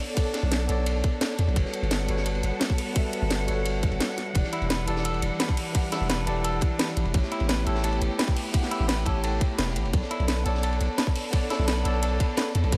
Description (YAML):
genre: liquid drum and bass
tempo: 172 BPM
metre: 4/4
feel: straight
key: unclear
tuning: A4 = 439 Hz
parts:
  - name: tine electric piano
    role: accompaniment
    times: 0.0-12.8 s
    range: E3 to F#5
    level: -34 LUFS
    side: equal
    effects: dub echo
  - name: clear studio string section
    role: sustained chords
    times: 0.0-12.8 s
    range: G3 to F#5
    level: -38 LUFS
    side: equal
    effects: none
  - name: crunchy breakbeat drum kit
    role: drums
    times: 0.2-12.8 s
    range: hi-hat, ride cymbal, snare drum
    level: -38 LUFS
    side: equal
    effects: high-pass filter on cymbals, high-pass filter on hats, high-pass filter on snare, high-pass filter on room
  - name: electronic kick drum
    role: drums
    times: 0.2-12.8 s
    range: none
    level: -28 LUFS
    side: equal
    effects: none
  - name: garage drum kit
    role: drums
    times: 0.2-12.8 s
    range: hi-hat, snare drum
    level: -31 LUFS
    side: equal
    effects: none
  - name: long sustained 808-style bass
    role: bass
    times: 0.4-12.8 s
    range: E1 to E2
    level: -29 LUFS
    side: equal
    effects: none
  - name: clean electric guitar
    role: arpeggios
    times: 4.5-12.5 s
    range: E4 to B4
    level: -36 LUFS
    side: equal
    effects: spring reverb, delay
room: small room ambience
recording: none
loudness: -26 LUFS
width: mono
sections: 0.0-12.8 A section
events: none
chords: 0.0 Bm9; 1.6 Gmaj9#11; 4.4 Em7; 7.1 A7; 9.9 Bm9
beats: | 0.17 0.52 0.87 1.21 | 1.56 1.91 2.26 2.61 | 2.96 3.31 3.66 4.00 | 4.35 4.70 5.05 5.40 | 5.75 6.10 6.45 6.80 | 7.14 7.49 7.84 8.19 | 8.54 8.89 9.24 9.59 | 9.94 10.28 10.63 10.98 | 11.33 11.68 12.03 12.38 | 12.73